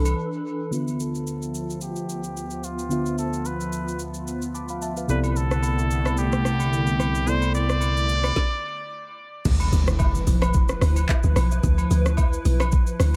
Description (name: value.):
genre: amapiano.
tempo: 110 BPM.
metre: 4/4.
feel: swing 55% on 16ths.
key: D dorian.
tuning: A4 = 440 Hz.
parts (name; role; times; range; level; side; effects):
hollow soft pad; sustained chords; 0.0-13.2 s; D2 to B4; -32 LUFS; equal; ensemble chorus, sidechain pumping, low-pass filter.
deep log drum bass; bass; 0.0-0.1, 9.5-13.2 s; B1 to D2; -23 LUFS; equal; none.
smooth R&B drum kit; drums; 0.1-13.1 s; crash cymbal, handclaps, hi-hat, kick drum, rim click, shaker, snare drum; -28 LUFS; equal; none.
agogo bells and woodblock; percussion; 0.1-0.2, 5.2-12.7 s; none; -37 LUFS; equal; dub echo.
trumpet with straight mute; melody; 0.7-9.1 s; F4 to D5; -32 LUFS; equal; low-pass filter, dub echo.
mellow FM electric piano; accompaniment; 0.7-8.4 s; C3 to D6; -32 LUFS; equal; chorus, low-pass filter.
fat analog bass; bass; 5.1-8.3 s; C2; -26 LUFS; equal; none.
impact; sound effects; 9.5-11.6 s; none; -32 LUFS; equal; none.
room: little or no reverb.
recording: echo-heavy mix.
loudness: -23 LUFS.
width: mono.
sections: 0.7-9.5 A section; 9.5-13.2 B section.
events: break 0.2-0.7; filter sweep 0.7-9.5; FM electric piano fill 4.3-5.1; stop 8.4-9.5; drop 9.5-13.2; impact 9.5-11.6.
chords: 0.0 Cmaj13; 0.7 Dm69; 5.1 Cmaj13; 9.5 Dm69.